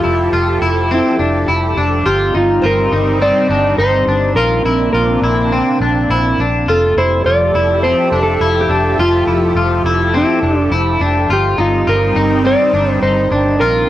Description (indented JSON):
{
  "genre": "dream pop",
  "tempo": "104 BPM",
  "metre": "4/4",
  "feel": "straight",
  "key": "F major",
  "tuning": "A4 = 438 Hz",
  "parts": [
    { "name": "mellow electric guitar", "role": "melody", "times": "0.0-13.9 s", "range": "E4 to D5", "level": "-16 LUFS", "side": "equal", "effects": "analog delay" },
    { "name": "lush unison pad", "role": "sustained chords", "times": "0.0-13.9 s", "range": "F3 to E5", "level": "-19 LUFS", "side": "right 1 dB", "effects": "chorus, phaser" },
    { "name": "electric guitar at the edge of break-up", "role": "arpeggios", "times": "0.0-13.9 s", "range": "C4 to F4", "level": "-17 LUFS", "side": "left 2 dB", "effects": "lush chorus, analog delay" },
    { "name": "vintage muted fingered electric bass", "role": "bass", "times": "0.0-13.9 s", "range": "F1 to Bb1", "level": "-18 LUFS", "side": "equal", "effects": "none" },
    { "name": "soft synth bell", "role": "texture", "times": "2.6-8.8, 12.4-13.8 s", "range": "A4 to C5", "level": "-31 LUFS", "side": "right 1 dB", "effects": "none" }
  ],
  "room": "light reverb, digital ambience",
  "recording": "dry, gritty hardware recording",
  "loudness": "-11 LUFS",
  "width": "side -13 dB against mid",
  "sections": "0.0-13.9 A section",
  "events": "none",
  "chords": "0.0 Fmaj9; 2.1 Eb69/G; 4.4 Bbadd9; 6.7 Fmaj9; 11.3 Eb69/G"
}